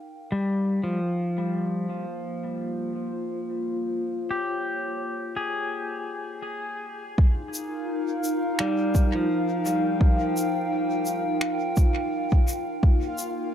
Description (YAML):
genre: ambient dub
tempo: 85 BPM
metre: 4/4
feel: swing 56% on 16ths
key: unclear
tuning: A4 = 440 Hz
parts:
  - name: warbly tape-like pad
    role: sustained chords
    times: 0.0-13.5 s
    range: Bb3 to G5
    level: -28 LUFS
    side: equal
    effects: chorus, built-in reverb
  - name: pedal steel guitar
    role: arpeggios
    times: 0.3-11.2 s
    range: F3 to Ab4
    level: -30 LUFS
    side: left 1 dB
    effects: low-pass filter, analog delay
  - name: electronic kick drum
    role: drums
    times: 7.2-13.0 s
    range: none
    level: -19 LUFS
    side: equal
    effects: overdrive
  - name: bubbling stepped-filter texture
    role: texture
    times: 7.3-13.5 s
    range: F4 to F5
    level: -35 LUFS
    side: left 2 dB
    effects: chorus, built-in reverb
  - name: shaker and finger snaps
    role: drums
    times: 7.5-13.3 s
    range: none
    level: -32 LUFS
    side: left 1 dB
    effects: low-pass filter on perc, low-pass filter on snare, low-pass filter on room, dub echo
room: moderate spring reverb, RT60 2.0 s, small room ambience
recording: echo-heavy mix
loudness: -24 LUFS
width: side -9 dB against mid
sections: 0.0-7.2 A section; 7.2-13.5 B section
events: filter sweep on ambient pad 0.0-7.2; filter sweep on pedal steel guitar 0.0-7.2; break 5.8-7.2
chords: 0.0 Bbm7; 7.2 Eb; 12.8 Bb5